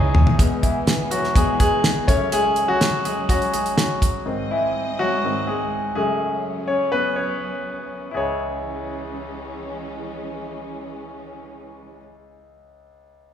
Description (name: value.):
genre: piano-driven pop.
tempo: 124 BPM.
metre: 4/4.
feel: straight.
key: C# minor.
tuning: A4 = 439 Hz.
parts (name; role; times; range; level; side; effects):
clear concert grand piano; accompaniment; 0.0-13.3 s; C#2 to C#5; -22 LUFS; left 1 dB; none.
warm studio string section; sustained chords; 0.0-12.0 s; E3 to D#5; -32 LUFS; right 1 dB; none.
damped 70s drum kit; drums; 0.1-4.1 s; hi-hat, kick drum, snare drum, toms; -20 LUFS; equal; none.
room: moderate recital hall reverb, RT60 1.5 s.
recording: recorded in a church or concert hall.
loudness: -19 LUFS.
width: side -9 dB against mid.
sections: 0.4-8.1 A section; 8.1-12.0 B section.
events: drum fill 0.0-0.4; grand piano solo 0.4-8.1.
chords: 0.4 E; 2.1 F#m; 4.3 G#; 6.0 F#m; 8.1 C#m.